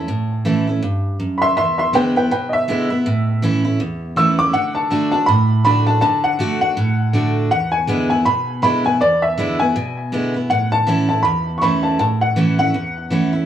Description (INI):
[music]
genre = rock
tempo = 161 BPM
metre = 4/4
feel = swing 59% on 8ths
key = A mixolydian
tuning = A4 = 440 Hz
[part]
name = warm upright piano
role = melody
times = 0.0-13.3 s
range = B4 to E6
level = -18 LUFS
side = equal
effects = tape echo
[part]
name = picked steel-string acoustic guitar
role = accompaniment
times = 0.0-13.5 s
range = E2 to F#4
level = -18 LUFS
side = right 1 dB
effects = none
[sound]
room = light reverb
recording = small room ambience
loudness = -15 LUFS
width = side -10 dB against mid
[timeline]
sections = 0.0-4.5 A section; 4.5-13.5 B section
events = upright piano solo 0.0-4.5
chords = 0.0 A; 1.6 E7; 3.1 A; 4.5 D; 7.5 E7; 10.5 A